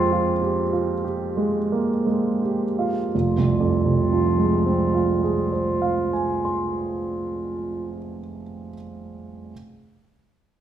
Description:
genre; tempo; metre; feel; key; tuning
classical, impressionist duo for clarinet and grand piano; 41-51 BPM; 3/4; rubato; F minor; A4 = 441 Hz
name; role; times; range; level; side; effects
clear clarinet; melody; 0.0-7.9 s; F4; -25 LUFS; equal; none
clear baby grand piano; accompaniment; 0.0-9.5 s; F1 to C6; -22 LUFS; right 2 dB; none
room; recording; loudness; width
wet recital hall reverb, RT60 1.4 s; minimal, uncompressed stereo recording; -20 LUFS; side -10 dB against mid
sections
0.0-3.1 A section; 3.1-7.3 B section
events
slowing down 0.0-3.1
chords
0.0 Fmadd9; 3.1 Fm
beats
0.43 1.70 | 3.12 4.52 5.89

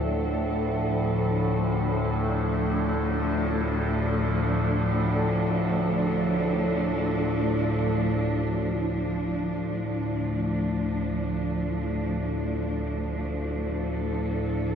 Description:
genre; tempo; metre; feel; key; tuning
dark ambient drone; free time; none; none; D minor; A4 = 439 Hz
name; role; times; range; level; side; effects
muted chamber cello section; sustained chords; 0.0-14.8 s; F3 to A4; -28 LUFS; equal; none
overtone-sweeping drone; drone; 0.0-14.8 s; D2 to A2; -26 LUFS; equal; chorus, built-in reverb
gamelan-type bronze metallophone; arpeggios; 8.7-14.8 s; E4; -38 LUFS; equal; ping-pong delay
room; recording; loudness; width
wet huge ambient reverb, RT60 9.0 s; dark, warm production; -24 LUFS; side -7 dB against mid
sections
0.0-8.7 A section; 8.7-14.8 B section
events
none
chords
0.0 Dm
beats
free time

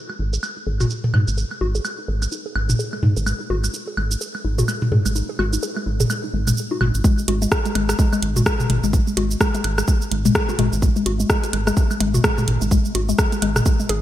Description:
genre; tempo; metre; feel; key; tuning
minimal techno; 127 BPM; 4/4; swing 59% on 16ths; unclear; A4 = 440 Hz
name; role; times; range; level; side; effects
hollow square pluck; riff; 0.1-13.9 s; G#3 to G#4; -25 LUFS; left 2 dB; chorus, vintage 12-bit sampler grit, sidechain pumping, ping-pong delay
electronic woodblock, toms and congas; percussion; 0.1-13.6 s; none; -24 LUFS; equal; gated reverb
rubbery square bass; bass; 0.2-14.0 s; G#1 to G#2; -22 LUFS; equal; sidechain pumping
house drum kit; drums; 0.3-14.0 s; cabasa, hi-hat, rim click; -25 LUFS; right 1 dB; low-pass filter on perc, low-pass filter on hats, low-pass filter on snare, gated reverb
electronic kick drum; drums; 7.0-13.8 s; none; -19 LUFS; equal; none
room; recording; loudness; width
light reverb, digital ambience; bright 1980s-style digital production; -18 LUFS; side -12 dB against mid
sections
0.0-7.0 A section; 7.0-14.0 B section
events
drop 7.0-14.0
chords
0.0 G#5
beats
0.43 0.90 | 1.38 1.85 2.32 2.79 | 3.27 3.74 4.21 4.68 | 5.16 5.63 6.10 6.57 | 7.04 7.52 7.99 8.46 | 8.93 9.41 9.88 10.35 | 10.82 11.30 11.77 12.24 | 12.71 13.19 13.66

